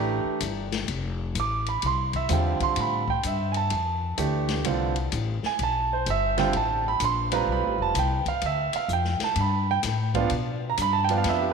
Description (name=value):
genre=modal jazz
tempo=127 BPM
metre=4/4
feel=swing 66% on 8ths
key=F lydian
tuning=A4 = 440 Hz
part: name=clear concert grand piano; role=accompaniment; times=0.0-11.5 s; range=D3 to D6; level=-25 LUFS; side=right 6 dB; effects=none
part: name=upright bass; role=bass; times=0.0-11.5 s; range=F1 to B2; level=-28 LUFS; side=left 3 dB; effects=none
part: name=open jazz drum kit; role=drums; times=0.4-11.4 s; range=hi-hat, kick drum, ride cymbal, snare drum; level=-33 LUFS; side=left 8 dB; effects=none
room=wet echo chamber reverb, RT60 2.3 s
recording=1960s-style stereo with parts hard left and right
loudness=-23 LUFS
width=side -5 dB against mid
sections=0.9-11.5 A section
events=none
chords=0.0 C (rootless); 0.9 Fmaj9#11; 8.4 G